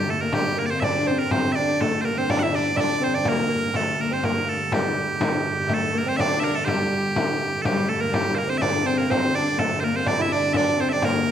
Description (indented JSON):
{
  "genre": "medieval dance",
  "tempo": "123 BPM",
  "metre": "2/4",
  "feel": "straight",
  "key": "G dorian",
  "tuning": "A4 = 440 Hz",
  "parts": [
    { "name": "loud bright bagpipes", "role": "melody", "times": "0.0-11.3 s", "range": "G4 to F#5", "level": "-25 LUFS", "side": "right 2 dB", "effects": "none" },
    { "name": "lute", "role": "second line", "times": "0.0-11.3 s", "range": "G3 to E4", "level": "-28 LUFS", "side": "right 4 dB", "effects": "none" },
    { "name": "warm viola da gamba", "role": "second line", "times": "0.0-11.3 s", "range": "G3 to E4", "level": "-26 LUFS", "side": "left 3 dB", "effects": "none" },
    { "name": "pipe organ, strings celeste", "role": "drone", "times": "0.0-11.3 s", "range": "G2 to D3", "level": "-32 LUFS", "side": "right 1 dB", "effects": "none" },
    { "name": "frame drum", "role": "percussion", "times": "0.1-11.3 s", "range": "none", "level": "-26 LUFS", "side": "left 2 dB", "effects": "none" }
  ],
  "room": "wet recital hall reverb, RT60 1.6 s",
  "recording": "none",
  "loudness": "-20 LUFS",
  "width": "side -9 dB against mid",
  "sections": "0.0-5.7 A section; 5.7-11.3 A section",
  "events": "none",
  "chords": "none"
}